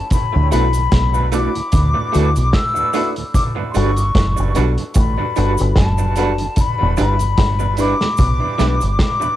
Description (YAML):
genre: lovers rock reggae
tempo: 74 BPM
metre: 4/4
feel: swing 56% on 16ths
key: D major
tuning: A4 = 440 Hz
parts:
  - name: breathy concert flute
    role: melody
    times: 0.0-9.4 s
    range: A5 to E6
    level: -21 LUFS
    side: left 4 dB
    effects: cassette tape, tape echo
  - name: vintage drum kit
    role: drums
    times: 0.1-9.2 s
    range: hi-hat, kick drum, snare drum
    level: -19 LUFS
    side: equal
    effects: cassette tape
  - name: cabasa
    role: percussion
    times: 0.1-9.4 s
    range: none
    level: -36 LUFS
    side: right 13 dB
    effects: none
  - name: mellow tonewheel organ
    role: accompaniment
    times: 0.4-9.3 s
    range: D2 to F#4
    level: -30 LUFS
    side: right 6 dB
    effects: none
  - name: deep dub fingered electric bass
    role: bass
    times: 0.4-9.0 s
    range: E1 to D2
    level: -17 LUFS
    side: equal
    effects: none
  - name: FM electric piano with soft pad layer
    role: accompaniment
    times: 0.5-8.7 s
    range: D4 to B4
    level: -27 LUFS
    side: left 8 dB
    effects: chorus, phaser, cassette tape, tape echo
  - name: electric guitar through a small old amp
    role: stabs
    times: 0.5-8.7 s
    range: G3 to B4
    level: -24 LUFS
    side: right 8 dB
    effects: tremolo, cassette tape, tape echo
room: studio reverb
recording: home recording on cassette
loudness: -14 LUFS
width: side -13 dB against mid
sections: 0.0-9.4 A section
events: none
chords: 0.1 D6; 3.3 Gmaj7; 6.6 Em7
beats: | 0.12 0.93 1.73 2.54 | 3.35 4.16 4.96 5.77 | 6.58 7.38 8.19 8.99